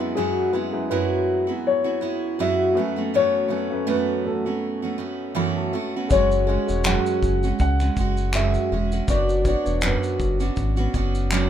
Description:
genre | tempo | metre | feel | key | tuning
acoustic pop | 81 BPM | 4/4 | swing 55% on 16ths | F# minor | A4 = 441 Hz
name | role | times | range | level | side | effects
picked steel-string acoustic guitar | accompaniment | 0.0-11.5 s | F#2 to G#4 | -24 LUFS | right 3 dB | none
warm baby grand piano | accompaniment | 0.0-11.5 s | F#2 to C#6 | -31 LUFS | left 2 dB | none
dark upright piano | melody | 0.2-11.5 s | G#4 to F#5 | -25 LUFS | left 2 dB | none
sub bass with octave | bass | 6.1-11.5 s | E1 to C#2 | -23 LUFS | equal | none
cloth-damped thuddy drum kit | drums | 6.1-11.5 s | finger snaps, kick drum, shaker | -26 LUFS | equal | none
group handclap | percussion | 6.9-11.5 s | none | -31 LUFS | left 5 dB | none
room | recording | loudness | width
little or no reverb | minimal, uncompressed stereo recording | -20 LUFS | side -10 dB against mid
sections
0.0-11.5 A section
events
grand piano fill 5.0-6.1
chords
0.0 E/F#; 2.8 Aadd9/F#; 6.1 F#sus2; 9.1 Bmadd9

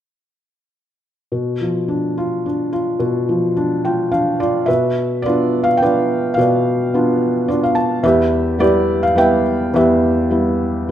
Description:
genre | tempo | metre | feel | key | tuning
classical, lyrical solo piano | 107 BPM | 3/4 | rubato | unclear | A4 = 438 Hz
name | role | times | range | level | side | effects
felt-muted upright piano | solo | 1.3-10.9 s | E2 to A5 | -14 LUFS | equal | none
room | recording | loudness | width
moderate recital hall reverb, RT60 1.3 s | minimal, uncompressed stereo recording | -14 LUFS | side -10 dB against mid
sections
1.3-4.7 A section; 4.7-10.9 B section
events
felt piano fill 3.6-4.7, 7.2-8.0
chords
1.3 Bdim; 8.0 Em

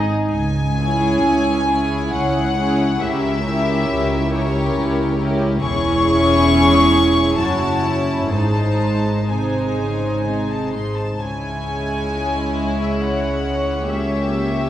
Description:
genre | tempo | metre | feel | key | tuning
classical, slow romantic movement for string orchestra | 58-71 BPM | 3/4 | rubato | C# minor | A4 = 442 Hz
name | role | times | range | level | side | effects
rich symphonic violin section | second line | 0.0-14.7 s | D#4 to C#5 | -25 LUFS | left 2 dB | none
dark symphonic viola section | accompaniment | 0.0-14.7 s | G#3 to E4 | -20 LUFS | right 1 dB | none
dark studio double bass section | bass | 0.0-14.7 s | E1 to C#2 | -24 LUFS | equal | none
warm studio cello section | bass | 0.0-14.7 s | C#2 to C#3 | -25 LUFS | right 1 dB | none
rich studio violin section | melody | 0.3-14.7 s | C#5 to C#6 | -23 LUFS | left 3 dB | none
room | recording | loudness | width
wet concert hall reverb, RT60 2.2 s | heard from further back in the room, vinyl crackle | -16 LUFS | side -12 dB against mid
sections
0.3-14.7 A section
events
none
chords
0.3 C#m; 5.6 C#m/E; 7.4 F#m7; 8.3 G#; 11.2 C#m; 13.9 C#dim7

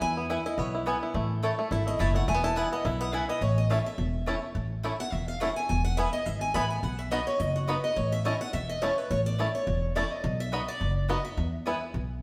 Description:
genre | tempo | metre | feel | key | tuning
bluegrass | 211 BPM | 4/4 | swing 55% on 8ths | unclear | A4 = 440 Hz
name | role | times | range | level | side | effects
bluegrass banjo | melody | 0.0-11.7 s | A3 to A4 | -35 LUFS | equal | none
picked acoustic archtop guitar | accompaniment | 0.0-11.5 s | F#4 to B5 | -34 LUFS | equal | none
upright bass | bass | 0.0-12.2 s | E1 to E2 | -32 LUFS | equal | none
mandolin | stabs | 0.3-11.8 s | A3 to B5 | -38 LUFS | equal | none
room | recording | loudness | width
wet stone room reverb, RT60 1.3 s | band playing live in one room | -29 LUFS | mono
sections
0.0-3.4 A section; 3.4-12.2 A section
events
steel-string acoustic guitar solo 0.0-12.2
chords
0.0 E; 1.1 A; 2.3 E; 3.4 A; 5.7 E; 6.8 B; 8.0 A; 10.2 B; 11.4 E5

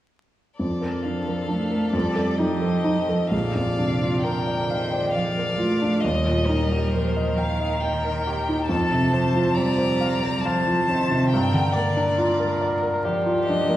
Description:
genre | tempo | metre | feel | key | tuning
classical, slow romantic movement for piano quartet | 68 BPM | 3/4 | rubato | Bb major | A4 = 440 Hz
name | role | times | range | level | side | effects
rich violin | melody | 0.6-13.8 s | Bb4 to Bb5 | -28 LUFS | left 2 dB | none
rich cello | second line | 0.6-13.8 s | C3 to A3 | -28 LUFS | right 2 dB | none
rich violin | second line | 0.6-13.8 s | G4 to Eb5 | -31 LUFS | left 1 dB | none
clear grand piano | accompaniment | 0.6-13.8 s | Bb1 to G5 | -22 LUFS | equal | none
room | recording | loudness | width
wet recital hall reverb, RT60 1.8 s | heard from further back in the room, vinyl crackle | -20 LUFS | side -13 dB against mid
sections
0.6-3.3 A section; 3.3-13.8 B section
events
none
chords
0.6 Bb/F; 1.9 F9; 3.3 Bb; 6.0 Eb; 8.7 F; 11.3 Gm7

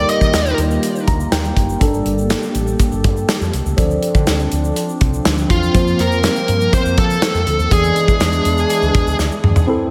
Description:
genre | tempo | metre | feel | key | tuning
1980s-style pop | 122 BPM | 4/4 | straight | unclear | A4 = 439 Hz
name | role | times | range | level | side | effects
high-gain lead guitar | melody | 0.0-0.6, 5.5-9.2 s | F4 to Eb5 | -21 LUFS | equal | distortion, tape echo
tine electric piano | accompaniment | 0.0-9.9 s | E3 to Bb5 | -23 LUFS | equal | overdrive, phaser, slapback echo
warm analog pad | sustained chords | 0.0-9.9 s | C2 to A4 | -27 LUFS | equal | chorus
woody fretless electric bass | bass | 0.0-9.7 s | Gb1 to F3 | -22 LUFS | equal | none
modern studio drum kit | drums | 0.1-9.7 s | hi-hat, kick drum, snare drum, toms | -20 LUFS | equal | none
egg shaker | percussion | 0.2-9.7 s | none | -39 LUFS | equal | none
room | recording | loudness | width
moderate lush hall reverb, RT60 2.1 s | big arena sound | -16 LUFS | mono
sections
0.0-9.7 A section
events
tine electric piano fill 0.8-1.8; drum fill 9.2-9.7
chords
0.0 Ebmaj7; 1.8 Gmadd9; 3.8 Dm7; 5.7 Fsus4; 7.7 E7

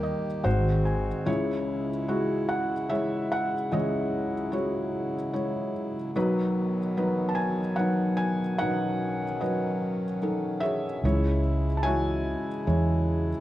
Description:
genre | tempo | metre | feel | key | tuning
acoustic folk-pop ballad | 74 BPM | 3/4 | straight | unclear | A4 = 440 Hz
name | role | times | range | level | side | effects
felt-muted upright piano | melody | 0.0-13.4 s | Ab1 to A5 | -26 LUFS | equal | none
pedal harmonium | sustained chords | 0.0-13.4 s | C#3 to G4 | -34 LUFS | equal | none
vintage muted fingered electric bass | bass | 0.0-1.1, 11.0-13.3 s | Ab1 to E2 | -25 LUFS | equal | none
room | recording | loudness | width
light reverb | none | -25 LUFS | side -14 dB against mid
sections
0.0-1.3 A section; 1.3-13.4 A section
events
felt piano fill 0.0-1.3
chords
0.5 Ab7; 1.3 C#m; 6.2 B; 11.0 C#m

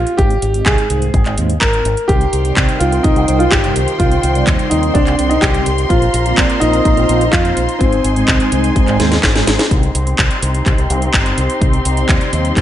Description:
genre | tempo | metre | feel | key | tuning
italo disco | 126 BPM | 4/4 | straight | C minor | A4 = 440 Hz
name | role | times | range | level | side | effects
warm concert grand piano | melody | 0.0-9.4 s | C4 to Bb4 | -17 LUFS | equal | digital delay
fingered electric bass with an envelope filter | bass | 0.0-12.6 s | G1 to F2 | -18 LUFS | equal | none
house drum kit | drums | 0.1-12.6 s | handclaps, hi-hat, snare drum | -19 LUFS | equal | gated reverb
mellow synth brass | stabs | 0.2-12.6 s | Ab2 to Eb5 | -21 LUFS | right 1 dB | chorus
electronic kick drum | drums | 0.2-12.6 s | none | -16 LUFS | equal | none
dark studio string section | sustained chords | 2.1-12.6 s | Eb3 to C6 | -21 LUFS | left 1 dB | low-pass filter
room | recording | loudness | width
light reverb, digital ambience | nothing above 10.9 kHz | -11 LUFS | side -12 dB against mid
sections
0.0-9.7 A section; 9.7-12.6 B section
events
filter sweep on analog polysynth 0.0-9.7, 9.7-12.6; drum fill 9.0-9.7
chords
0.2 Ab; 2.1 Cm; 5.9 Bbsus2; 7.8 Ab; 9.7 Cm

